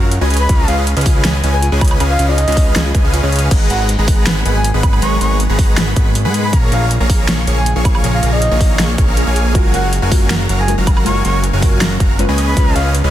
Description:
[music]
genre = future bass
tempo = 159 BPM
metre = 4/4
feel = half-time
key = G# dorian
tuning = A4 = 440 Hz
[part]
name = thumb-piano-like synth pluck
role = arpeggios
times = 0.0-3.5 s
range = E#4 to G#5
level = -28 LUFS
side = left 4 dB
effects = chorus, sidechain pumping, dub echo
[part]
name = supersaw chords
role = riff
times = 0.0-13.1 s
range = F#3 to C#6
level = -19 LUFS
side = equal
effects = sidechain pumping
[part]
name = fat analog bass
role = bass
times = 0.0-13.1 s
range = F#1 to G#2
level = -16 LUFS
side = equal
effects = sidechain pumping
[part]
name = big-room dance drum kit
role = drums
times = 0.1-13.0 s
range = crash cymbal, hi-hat, snare drum, woodblock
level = -21 LUFS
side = right 1 dB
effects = overdrive
[part]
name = breathy flute-like synth lead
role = melody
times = 0.4-12.9 s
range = D#5 to C#6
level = -22 LUFS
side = equal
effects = chorus, sidechain pumping, dub echo
[part]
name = electronic kick drum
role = drums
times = 0.5-12.6 s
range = none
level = -14 LUFS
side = equal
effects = none
[part]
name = ethereal airy pad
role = sustained chords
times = 4.4-13.1 s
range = C#3 to A#4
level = -28 LUFS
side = right 1 dB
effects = none
[part]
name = soft round pluck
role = accompaniment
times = 9.5-13.1 s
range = G#3 to B4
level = -23 LUFS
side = left 2 dB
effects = wide subtle chorus, sidechain pumping, dub echo
[sound]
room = little or no reverb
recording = dense, heavily limited modern master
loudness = -11 LUFS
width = side -12 dB against mid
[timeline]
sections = 0.0-3.5 A section; 3.5-13.1 A section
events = drop 0.0-3.5, 3.5-13.1; kick drops out 3.1-3.5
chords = 0.3 C#7; 3.5 G#m9; 6.5 A#m7; 9.5 F#maj9; 12.4 C#7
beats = 0.12 | 0.49 0.87 1.25 1.62 | 2.00 2.38 2.76 3.13 | 3.51 3.89 4.27 4.64 | 5.02 5.40 5.78 6.15 | 6.53 6.91 7.29 7.66 | 8.04 8.42 8.79 9.17 | 9.55 9.93 10.30 10.68 | 11.06 11.44 11.81 12.19 | 12.57 12.95

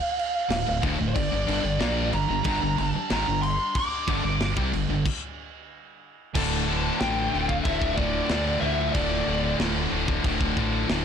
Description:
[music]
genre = heavy metal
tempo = 92 BPM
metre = 4/4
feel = straight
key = D minor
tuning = A4 = 440 Hz
[part]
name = bluesy overdriven lead guitar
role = melody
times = 0.0-9.5 s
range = C5 to D6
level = -28 LUFS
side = equal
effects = distortion, slapback echo
[part]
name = tight metal drum kit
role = drums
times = 0.2-11.0 s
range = crash cymbal, kick drum, snare drum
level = -30 LUFS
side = equal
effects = none
[part]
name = high-gain distorted guitar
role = riff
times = 0.5-11.0 s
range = D2 to Bb3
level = -30 LUFS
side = left 13 dB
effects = distortion
[part]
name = overdriven electric guitar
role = riff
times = 0.5-11.0 s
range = D2 to Bb3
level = -32 LUFS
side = right 1 dB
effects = none
[part]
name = scooped high-gain guitar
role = riff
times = 0.5-11.0 s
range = D2 to Bb3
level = -32 LUFS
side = right 10 dB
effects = distortion
[part]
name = growling fingered electric bass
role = bass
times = 0.5-11.0 s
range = D1 to D2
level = -30 LUFS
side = equal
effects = overdrive
[part]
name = airy breathy pad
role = sustained chords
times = 1.1-11.0 s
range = D3 to G5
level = -40 LUFS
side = right 1 dB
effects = chorus
[sound]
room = light reverb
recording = blown-out, overdriven recording, overdrive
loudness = -23 LUFS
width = side -7 dB against mid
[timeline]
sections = 0.0-6.4 A section; 6.4-11.0 B section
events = stop 5.1-6.4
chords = 0.0 Dm; 1.2 G5; 6.4 Dm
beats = 0.51 | 1.16 1.81 2.46 3.11 | 3.76 4.41 5.06 5.71 | 6.35 7.00 7.65 8.30 | 8.95 9.60 10.24 10.89

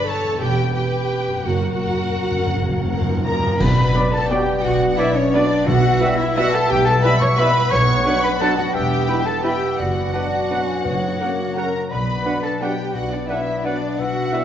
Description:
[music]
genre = classical, orchestral ballroom waltz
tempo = 172 BPM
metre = 3/4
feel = uneven beats, rubato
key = B minor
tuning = A4 = 440 Hz
[part]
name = warm symphonic violin section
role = melody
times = 0.0-14.4 s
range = C#5 to C#6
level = -29 LUFS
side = left 2 dB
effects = none
[part]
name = warm symphonic violin section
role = second line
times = 0.0-14.4 s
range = A#4 to C#6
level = -29 LUFS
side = equal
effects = none
[part]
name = rich symphonic viola section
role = accompaniment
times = 0.0-14.4 s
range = C#4 to B4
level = -28 LUFS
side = right 1 dB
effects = none
[part]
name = concert harp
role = arpeggios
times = 0.0-14.4 s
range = E2 to C#6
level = -26 LUFS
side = left 8 dB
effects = none
[part]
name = dark chamber cello section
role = bass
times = 0.4-14.4 s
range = E2 to C#5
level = -23 LUFS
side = equal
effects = none
[part]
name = warm symphonic double bass section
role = bass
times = 0.4-14.3 s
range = E1 to B1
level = -24 LUFS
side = right 4 dB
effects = none
[part]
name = cymbal swell, clash cymbals and concert bass drum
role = percussion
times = 1.5-4.3 s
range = none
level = -29 LUFS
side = equal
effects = none
[part]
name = timpani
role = percussion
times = 1.5-8.2, 10.8-11.3 s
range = F#2 to B2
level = -25 LUFS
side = equal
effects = none
[part]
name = mellow hollow silver concert flute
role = second line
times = 3.3-14.4 s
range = C#5 to C#6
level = -27 LUFS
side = left 1 dB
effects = none
[part]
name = warm clarinet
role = second line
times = 3.6-14.4 s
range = C#5 to F#5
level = -28 LUFS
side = left 1 dB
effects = none
[part]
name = mellow bassoon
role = accompaniment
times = 3.6-14.4 s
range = F#3 to D4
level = -28 LUFS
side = right 2 dB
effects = none
[part]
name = dark French horn section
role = sustained chords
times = 3.9-14.4 s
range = A#3 to E4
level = -31 LUFS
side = left 2 dB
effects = none
[part]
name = warm trombone section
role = sustained chords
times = 4.0-14.4 s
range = B2 to G3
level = -32 LUFS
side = right 3 dB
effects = none
[part]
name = warm trumpet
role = stabs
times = 4.0-14.4 s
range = D5 to B5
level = -28 LUFS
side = right 2 dB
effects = none
[sound]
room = moderate scoring stage reverb, RT60 1.7 s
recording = worn, warbling old tape, cassette tape, warbly pitch drift, nothing above 7.7 kHz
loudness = -17 LUFS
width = side -10 dB against mid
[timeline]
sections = 0.0-3.6 A section; 3.6-14.4 B section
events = timpani fill 1.5-3.6; band accent 3.6-3.9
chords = 0.4 C#m7b5/E; 1.5 F#; 3.6 Bm; 5.7 Em/B; 7.7 Bm; 8.7 Em; 9.8 Bm/F#; 10.8 F#; 11.9 Bm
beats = 0.07 | 0.41 0.75 1.11 | 1.46 1.82 2.19 | 2.54 2.89 3.26 | 3.60 3.95 4.30 | 4.64 4.98 5.34 | 5.67 6.01 6.36 | 6.70 7.03 7.38 | 7.72 8.05 8.40 | 8.74 9.07 9.43 | 9.78 10.13 10.50 | 10.85 11.20 11.57 | 11.91 12.26 12.61 | 12.95 13.29 13.65 | 13.98 14.32

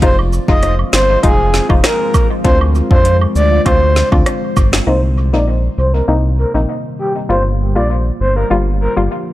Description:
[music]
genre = dancehall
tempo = 99 BPM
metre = 4/4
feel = straight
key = C minor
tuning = A4 = 440 Hz
[part]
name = breathy flute-like synth lead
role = melody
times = 0.0-8.9 s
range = G4 to Eb5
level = -17 LUFS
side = equal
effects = chorus, low-pass filter, tape echo
[part]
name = hollow square pluck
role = accompaniment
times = 0.0-9.2 s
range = G3 to F4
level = -20 LUFS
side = left 3 dB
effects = chorus, sidechain pumping, low-pass filter, tape echo
[part]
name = deep dark ambient pad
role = sustained chords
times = 0.0-9.3 s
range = C3 to F4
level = -24 LUFS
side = left 1 dB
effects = chorus, built-in reverb, sidechain pumping, low-pass filter
[part]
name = round analog bass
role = bass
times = 0.0-9.1 s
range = F1 to F2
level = -14 LUFS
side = equal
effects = none
[part]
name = afro-pop drum kit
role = drums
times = 0.0-4.9 s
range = hi-hat, kick drum, rim click, snare drum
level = -14 LUFS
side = equal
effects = none
[part]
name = woodblock and cabasa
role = percussion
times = 0.2-4.7 s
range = none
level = -25 LUFS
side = right 6 dB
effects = tape echo
[sound]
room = light reverb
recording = echo-heavy mix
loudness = -11 LUFS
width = side -15 dB against mid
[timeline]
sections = 0.0-4.9 A section; 4.9-9.3 B section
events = filter sweep 4.9-9.3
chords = 0.0 Fm7; 2.4 Dm7b5; 4.9 Cm7; 7.3 Gm7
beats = | 0.02 0.63 1.23 1.84 | 2.45 3.05 3.66 4.26 | 4.87 5.48 6.08 6.69 | 7.29 7.90 8.51 9.11

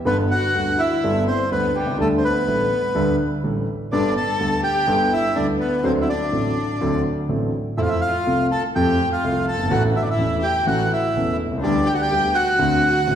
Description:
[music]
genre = tango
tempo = 124 BPM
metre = 4/4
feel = rubato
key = G major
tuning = A4 = 441 Hz
[part]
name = bandoneon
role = melody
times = 0.1-13.2 s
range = G4 to A5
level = -22 LUFS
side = right 1 dB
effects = none
[part]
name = warm violin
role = second line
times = 0.1-13.2 s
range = G3 to A4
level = -26 LUFS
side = left 3 dB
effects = none
[part]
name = warm concert grand piano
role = accompaniment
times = 0.1-13.2 s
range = E1 to A4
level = -21 LUFS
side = equal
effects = none
[sound]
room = wet recital hall reverb, RT60 1.8 s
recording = recorded in a church or concert hall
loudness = -18 LUFS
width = side -9 dB against mid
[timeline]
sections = 0.1-13.2 A section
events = none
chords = 0.1 Gadd9; 2.0 Dsus4; 3.9 Gadd9; 5.8 D7; 7.8 F; 9.7 A; 11.6 G/D; 12.6 D7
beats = | 0.06 0.54 1.03 1.51 | 2.00 2.48 2.96 3.44 | 3.92 4.40 4.88 5.36 | 5.84 6.33 6.81 7.30 | 7.78 8.27 8.75 9.24 | 9.72 10.20 10.68 11.16 | 11.64 12.11 12.60 13.08

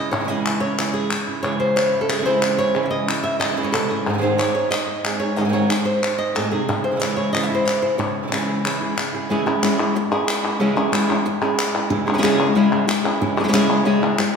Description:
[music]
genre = flamenco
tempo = 183 BPM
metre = 4/4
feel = straight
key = C# harmonic minor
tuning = A4 = 440 Hz
[part]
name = flamenco guitar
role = melody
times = 0.0-14.2 s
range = G#2 to E5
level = -20 LUFS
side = equal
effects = none
[part]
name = flamenco guitar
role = stabs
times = 0.0-14.3 s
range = G#2 to G#4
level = -24 LUFS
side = right 2 dB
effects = none
[part]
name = palmas hand claps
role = percussion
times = 0.1-14.3 s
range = none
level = -24 LUFS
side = left 2 dB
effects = none
[sound]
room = wet scoring stage reverb, RT60 1.6 s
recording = recorded in a church or concert hall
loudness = -18 LUFS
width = side -6 dB against mid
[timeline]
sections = 0.0-9.3 A section; 9.3-14.4 B section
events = none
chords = 0.0 C#m; 4.1 G#; 6.7 C#m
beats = | 0.13 0.46 0.78 1.11 | 1.44 1.77 2.10 2.42 | 2.75 3.08 3.41 3.74 | 4.07 4.39 4.72 5.05 | 5.38 5.70 6.03 6.36 | 6.69 7.01 7.34 7.67 | 8.00 8.32 8.65 8.97 | 9.30 9.63 9.95 10.28 | 10.61 10.93 11.26 11.58 | 11.91 12.23 12.56 12.88 | 13.21 13.54 13.86 14.19

